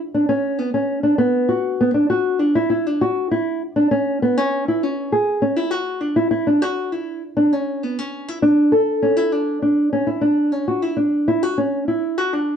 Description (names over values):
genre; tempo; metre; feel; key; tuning
rock; 67 BPM (dotted quarters); 6/8; straight; unclear; A4 = 440 Hz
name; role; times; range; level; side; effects
nylon-string guitar; solo; 0.1-12.6 s; B3 to A4; -17 LUFS; equal; none
room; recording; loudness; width
moderate studio reverb, RT60 0.8 s; worn, warbling old tape, cassette tape, warbly pitch drift; -17 LUFS; side -8 dB against mid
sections
0.0-9.3 A section; 9.3-12.6 B section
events
none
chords
none